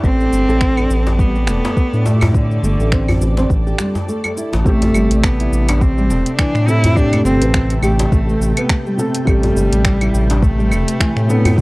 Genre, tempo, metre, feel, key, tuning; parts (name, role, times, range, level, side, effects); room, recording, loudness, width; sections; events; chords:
organic downtempo; 104 BPM; 4/4; swing 57% on 16ths; A minor; A4 = 440 Hz
warm cello; melody; 0.0-11.6 s; D3 to E4; -20 LUFS; equal; analog delay
granular cloud pad; sustained chords; 0.0-11.6 s; A3 to G5; -29 LUFS; equal; built-in reverb, sidechain pumping
nylon-string guitar; arpeggios; 0.0-11.4 s; E3 to B4; -23 LUFS; equal; vintage 12-bit sampler grit, tape echo
smooth synth bass; bass; 0.0-11.6 s; E1 to A2; -16 LUFS; equal; sidechain pumping
deep house drum kit; drums; 0.0-11.6 s; cabasa, claves, finger snaps, hi-hat; -22 LUFS; equal; overdrive
electronic kick drum; drums; 0.0-11.6 s; -15 LUFS; equal
djembe; percussion; 0.8-11.6 s; -22 LUFS; left 1 dB
felt-muted upright piano; accompaniment; 4.6-11.6 s; C3 to A4; -21 LUFS; equal; sidechain pumping
little or no reverb; dry, gritty hardware recording, cassette tape; -13 LUFS; side -23 dB against mid
0.0-4.7 A section; 4.7-11.6 B section
break 4.1-4.7
0.0 Amadd9